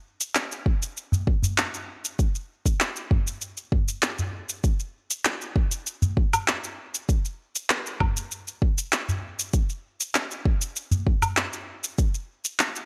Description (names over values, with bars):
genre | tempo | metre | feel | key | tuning
downtempo | 98 BPM | 4/4 | straight | none | none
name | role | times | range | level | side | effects
electronic shaker, handclaps and woodblock | drums | 0.2-12.9 s | none | -28 LUFS | equal | none
electronic kick drum | drums | 0.7-12.1 s | none | -25 LUFS | equal | none
udu | percussion | 1.1-11.3 s | none | -29 LUFS | equal | none
room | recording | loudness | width
light reverb, digital ambience | none | -26 LUFS | mono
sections
0.0-12.9 A section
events
none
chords
none